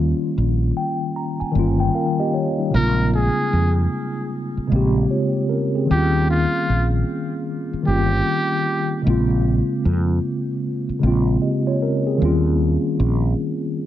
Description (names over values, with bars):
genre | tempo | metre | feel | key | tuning
hip hop | 76 BPM | 4/4 | swing 63% on 16ths | unclear | A4 = 438 Hz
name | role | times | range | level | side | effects
mellow tine electric piano | accompaniment | 0.0-13.9 s | C3 to Bb5 | -20 LUFS | left 1 dB | medium stereo tremolo, cassette tape, low-pass filter
mellow fretless electric bass | bass | 0.0-13.3 s | G1 to F2 | -19 LUFS | equal | none
trumpet with metal mute | melody | 2.8-9.0 s | F4 to Bb4 | -24 LUFS | right 1 dB | low-pass filter, analog delay
room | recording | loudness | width
moderate recital hall reverb, RT60 1.5 s, studio ambience | cassette tape | -18 LUFS | side -12 dB against mid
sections
0.0-13.9 A section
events
tine electric piano fill 0.4-2.7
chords
0.0 Eb7; 2.7 Bbm7; 5.9 Eb7; 9.0 Bbm7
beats
0.36 1.15 1.94 | 2.73 3.52 4.31 5.10 | 5.89 6.68 7.46 8.26 | 9.04 9.83 10.62 11.41 | 12.20 12.99 13.78